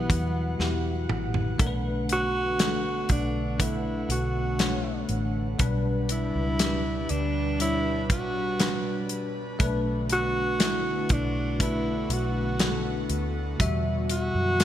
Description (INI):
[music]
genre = pop ballad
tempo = 60 BPM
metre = 4/4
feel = straight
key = B minor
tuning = A4 = 435 Hz
[part]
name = warm alto saxophone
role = melody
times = 0.0-14.6 s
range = B3 to F#4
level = -29 LUFS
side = right 1 dB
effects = none
[part]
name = bell-like tine electric piano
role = accompaniment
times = 0.0-14.6 s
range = B2 to E5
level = -31 LUFS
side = left 3 dB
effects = ensemble chorus
[part]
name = airy breathy pad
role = sustained chords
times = 0.0-14.6 s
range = B2 to F#5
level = -35 LUFS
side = right 2 dB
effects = chorus
[part]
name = vintage muted fingered electric bass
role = bass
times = 0.0-14.6 s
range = A1 to F#2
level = -30 LUFS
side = equal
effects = none
[part]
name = modern studio drum kit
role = drums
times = 0.1-14.6 s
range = hi-hat, kick drum, snare drum, toms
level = -27 LUFS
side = equal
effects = gated reverb
[sound]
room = light reverb, small room reverb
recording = bright 1980s-style digital production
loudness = -24 LUFS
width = side -11 dB against mid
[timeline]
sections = 0.0-14.6 A section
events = drum fill 0.6-1.6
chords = 0.0 Emadd9; 1.6 Bm7; 5.6 G/B; 9.6 Bm7; 13.6 Emadd9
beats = 0.60 | 1.60 2.60 3.60 4.60 | 5.60 6.60 7.60 8.60 | 9.60 10.60 11.60 12.60 | 13.60 14.60